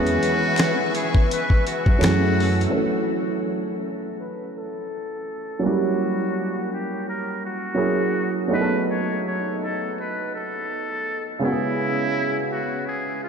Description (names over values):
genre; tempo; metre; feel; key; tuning
lo-fi hip hop; 83 BPM; 4/4; swing 59% on 16ths; F# dorian; A4 = 440 Hz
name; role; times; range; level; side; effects
trumpet with metal mute; melody; 0.0-13.3 s; E4 to C#5; -28 LUFS; left 1 dB; low-pass filter, tape echo
warm upright piano; accompaniment; 0.0-13.3 s; C#3 to A4; -24 LUFS; right 2 dB; cassette tape, low-pass filter
string machine, violas; sustained chords; 0.0-2.7 s; A3 to E6; -29 LUFS; left 2 dB; ensemble chorus
upright bass; bass; 0.0-2.6 s; E2 to F#2; -24 LUFS; equal; none
dusty soul sampler-style drum kit; drums; 0.1-2.7 s; hi-hat, kick drum, snare drum; -23 LUFS; equal; none
finger snap; percussion; 0.6-2.2 s; none; barely audible; none; none
room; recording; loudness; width
wet cathedral reverb, RT60 5.3 s; dreamy mix soaked in reverb; -21 LUFS; side -6 dB against mid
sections
0.0-2.7 A section; 2.7-13.3 B section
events
filter sweep 2.7-13.3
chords
0.0 E6; 2.0 F#m9; 2.7 F#m7; 5.6 F#7b9; 7.8 F#9; 8.5 B7; 11.4 E6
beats
0.56 1.29 2.01 | 2.73 3.45 4.18 4.90 | 5.62 6.35 7.07 7.79 | 8.52 9.24 9.96 10.68 | 11.41 12.13 12.85